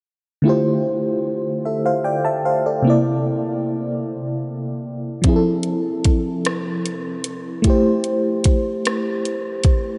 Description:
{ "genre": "slow six-eight R&B", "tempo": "50 BPM (dotted quarters)", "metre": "6/8", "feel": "straight", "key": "D minor", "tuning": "A4 = 442 Hz", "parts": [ { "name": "FM electric piano with tremolo", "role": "accompaniment", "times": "0.4-10.0 s", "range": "C3 to A5", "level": "-21 LUFS", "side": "equal", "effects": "none" }, { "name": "smooth R&B drum kit", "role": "drums", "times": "5.2-9.8 s", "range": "hi-hat, kick drum, rim click", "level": "-22 LUFS", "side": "equal", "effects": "none" } ], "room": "wet cathedral reverb, RT60 6.3 s", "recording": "dreamy mix soaked in reverb, nothing above 10.7 kHz", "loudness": "-20 LUFS", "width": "mono", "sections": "0.4-10.0 A section", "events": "none", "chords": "0.4 Dm11; 2.8 C9; 5.2 Fmaj7; 7.6 Am7" }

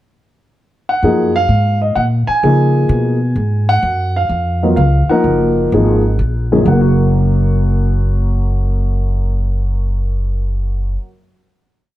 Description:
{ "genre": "jazz piano trio", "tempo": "128 BPM", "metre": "3/4", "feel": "swing 68% on 8ths", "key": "F# major", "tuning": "A4 = 440 Hz", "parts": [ { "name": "dark concert grand piano", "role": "melody", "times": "0.9-11.1 s", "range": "F#2 to G#5", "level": "-16 LUFS", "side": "equal", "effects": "plate reverb" }, { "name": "upright bass", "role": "bass", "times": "1.0-11.0 s", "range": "F#1 to C#3", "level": "-14 LUFS", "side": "equal", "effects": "none" } ], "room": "light reverb", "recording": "dark, warm production", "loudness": "-12 LUFS", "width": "side -14 dB against mid", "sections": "0.0-1.0 pickup bar; 1.0-6.7 A section; 6.7-9.5 final chord", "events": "none", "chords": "0.0 N.C.; 1.0 F#maj7; 2.4 C#7; 3.8 F#maj7; 6.7 F#" }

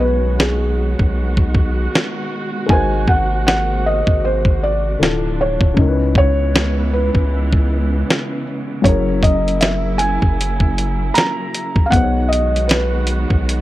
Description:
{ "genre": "lo-fi hip hop", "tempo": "78 BPM", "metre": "4/4", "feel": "swing 58% on 16ths", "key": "C# dorian", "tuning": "A4 = 440 Hz", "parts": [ { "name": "felt-muted upright piano", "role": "melody", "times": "0.0-13.6 s", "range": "G#4 to A#5", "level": "-21 LUFS", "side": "right 1 dB", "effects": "low-pass filter" }, { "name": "dark upright piano", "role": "accompaniment", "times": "0.0-13.6 s", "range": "B2 to C#5", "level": "-24 LUFS", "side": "left 4 dB", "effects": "low-pass filter" }, { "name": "warm studio string section", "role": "sustained chords", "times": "0.0-13.6 s", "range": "B#2 to F#4", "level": "-26 LUFS", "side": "right 2 dB", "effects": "low-pass filter" }, { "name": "saturated sub bass", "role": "bass", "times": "0.0-13.6 s", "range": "D1 to C#2", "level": "-19 LUFS", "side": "equal", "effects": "none" }, { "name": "dusty soul sampler-style drum kit", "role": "drums", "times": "0.4-13.6 s", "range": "hi-hat, kick drum, snare drum", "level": "-16 LUFS", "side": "equal", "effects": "none" } ], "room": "small room ambience", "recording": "none", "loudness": "-14 LUFS", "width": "side -15 dB against mid", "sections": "0.0-13.6 A section", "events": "break 0.0-8.8", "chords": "0.0 B6; 2.7 G#9; 5.0 Dm7; 5.8 C#m7; 8.8 F#7; 11.9 B6" }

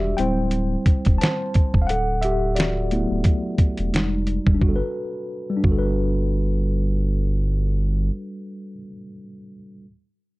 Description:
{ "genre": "lo-fi hip hop", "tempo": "88 BPM", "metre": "4/4", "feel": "swing 55% on 16ths", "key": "G major", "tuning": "A4 = 439 Hz", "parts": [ { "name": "mellow tine electric piano", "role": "accompaniment", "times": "0.0-9.9 s", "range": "F#3 to A5", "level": "-25 LUFS", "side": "left 1 dB", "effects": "medium stereo tremolo, cassette tape, plate reverb" }, { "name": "saturated sub bass", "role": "bass", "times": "0.0-8.1 s", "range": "D1 to G1", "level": "-23 LUFS", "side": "equal", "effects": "none" }, { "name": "dusty soul sampler-style drum kit", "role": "drums", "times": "0.2-5.8 s", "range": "hi-hat, kick drum, snare drum", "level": "-19 LUFS", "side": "equal", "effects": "none" } ], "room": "light reverb", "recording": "dark, warm production", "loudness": "-19 LUFS", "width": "side -20 dB against mid", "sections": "0.0-4.6 A section; 4.6-7.3 B section", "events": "tine electric piano solo 0.0-4.6", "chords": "0.2 D7sus4; 1.9 Gmaj13/D; 3.9 Fm9; 4.6 Gmaj9" }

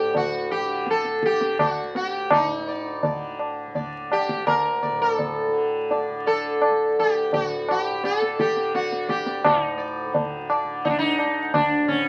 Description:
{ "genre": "indian classical, Hindustani", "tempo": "84 BPM", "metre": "5/4", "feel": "straight", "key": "D major", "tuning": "A4 = 440 Hz", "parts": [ { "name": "sitar", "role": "melody", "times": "0.0-12.1 s", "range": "C#4 to D5", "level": "-25 LUFS", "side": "equal", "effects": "none" }, { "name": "tanpura", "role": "drone", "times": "0.0-12.1 s", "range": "D2 to D3", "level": "-36 LUFS", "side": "equal", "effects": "none" }, { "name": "tabla", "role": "percussion", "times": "0.1-12.1 s", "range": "none", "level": "-26 LUFS", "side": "equal", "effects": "none" } ], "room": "wet studio reverb, RT60 0.6 s", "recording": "very old 78 rpm record, vinyl crackle", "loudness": "-23 LUFS", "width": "mono", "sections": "0.0-9.4 A section; 9.4-12.1 B section", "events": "speeding up 0.0-12.1", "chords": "none" }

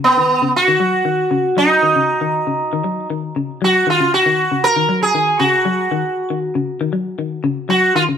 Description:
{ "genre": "afrobeat", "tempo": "117 BPM", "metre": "4/4", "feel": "straight", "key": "unclear", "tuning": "A4 = 440 Hz", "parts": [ { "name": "sitar", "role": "melody", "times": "0.0-8.0 s", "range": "Cb4 to Bb4", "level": "-15 LUFS", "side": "right 1 dB", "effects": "none" }, { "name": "clean electric guitar", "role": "arpeggios", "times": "0.0-8.2 s", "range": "Db3 to Gb3", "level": "-21 LUFS", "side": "left 5 dB", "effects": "none" } ], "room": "moderate studio reverb, RT60 0.8 s", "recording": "band playing live in one room", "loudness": "-14 LUFS", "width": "side -8 dB against mid", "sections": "0.0-3.6 A section; 3.6-8.2 B section", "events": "none", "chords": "0.0 Dbsus24" }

